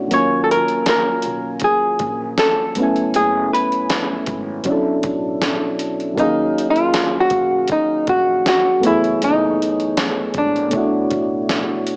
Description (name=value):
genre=lo-fi hip hop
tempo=79 BPM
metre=4/4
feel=swing 56% on 16ths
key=Eb minor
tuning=A4 = 440 Hz
part: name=soft electric-piano-like synth keys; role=accompaniment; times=0.0-12.0 s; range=Eb2 to Ab5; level=-20 LUFS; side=equal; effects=chorus, cassette tape, low-pass filter
part: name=archtop guitar, miked and amplified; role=melody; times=0.1-11.5 s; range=D4 to Db5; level=-17 LUFS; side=equal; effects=low-pass filter
part: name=upright bass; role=bass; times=0.1-11.6 s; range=Gb1 to Eb2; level=-33 LUFS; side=equal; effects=none
part: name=dusty soul sampler-style drum kit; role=drums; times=0.1-12.0 s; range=hi-hat, kick drum, snare drum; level=-23 LUFS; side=equal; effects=cassette tape
room=moderate spring reverb, RT60 1.9 s, digital ambience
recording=home recording on cassette, small speaker sound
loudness=-15 LUFS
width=side -38 dB against mid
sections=0.0-12.0 A section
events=kick muted 0.1-1.6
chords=0.1 Ebm11; 2.8 Gbm11; 4.7 Bm11; 6.2 Ebm11; 8.8 Gbm11; 10.7 Bm11